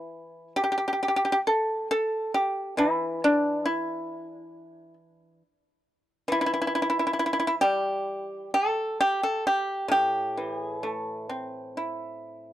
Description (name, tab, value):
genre	chinese traditional, Chinese solo plucked strings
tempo	67 BPM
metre	4/4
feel	rubato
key	unclear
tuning	A4 = 440 Hz
part	pipa	solo	0.0-12.5 s	A2 to A4	-25 LUFS	equal	none
room	small room ambience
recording	dry, close 1970s-style studio recording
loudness	-24 LUFS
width	side -13 dB against mid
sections	0.0-12.5 A section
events	none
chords	none